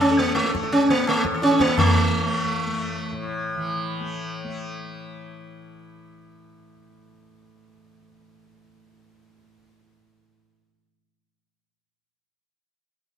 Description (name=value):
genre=indian classical, Hindustani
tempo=172 BPM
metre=4/4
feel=straight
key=unclear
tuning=A4 = 440 Hz
part: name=sitar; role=melody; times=0.0-3.1 s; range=A3 to A4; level=-20 LUFS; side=right 1 dB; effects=none
part: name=tanpura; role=drone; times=0.0-10.7 s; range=A2 to A3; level=-30 LUFS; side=left 2 dB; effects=none
part: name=tabla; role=percussion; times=0.0-1.9 s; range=none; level=-26 LUFS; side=equal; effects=none
room=moderate concert hall reverb, RT60 1.9 s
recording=minimal, uncompressed stereo recording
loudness=-20 LUFS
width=side -8 dB against mid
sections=0.0-1.8 A section; 1.8-4.6 B section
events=none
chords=none